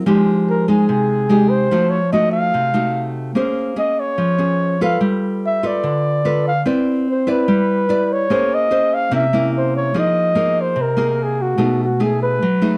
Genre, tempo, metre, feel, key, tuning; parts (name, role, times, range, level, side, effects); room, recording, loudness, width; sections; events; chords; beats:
bossa nova; 146 BPM; 4/4; straight; A4 = 440 Hz
nylon-string guitar; accompaniment; 0.0-12.8 s; B2 to D5; -20 LUFS; equal
breathy flugelhorn; melody; 0.5-12.8 s; F#4 to F5; -21 LUFS; equal; plate reverb
moderate studio reverb, RT60 0.7 s; dark, warm production; -17 LUFS; mono
0.0-9.9 A section; 9.9-12.8 B section
0.1 Fm9; 1.7 F7b9; 3.4 Bbm9; 5.0 G9; 6.7 Cmaj9; 8.3 Bbm9; 9.1 C7b9; 9.9 Fm7; 11.6 B13
| 0.07 0.48 0.89 1.30 | 1.71 2.12 2.53 2.94 | 3.35 3.77 4.18 4.59 | 5.00 5.41 5.83 6.24 | 6.65 7.06 7.47 7.89 | 8.30 8.71 9.12 9.53 | 9.95 10.36 10.77 11.18 | 11.59 12.00 12.41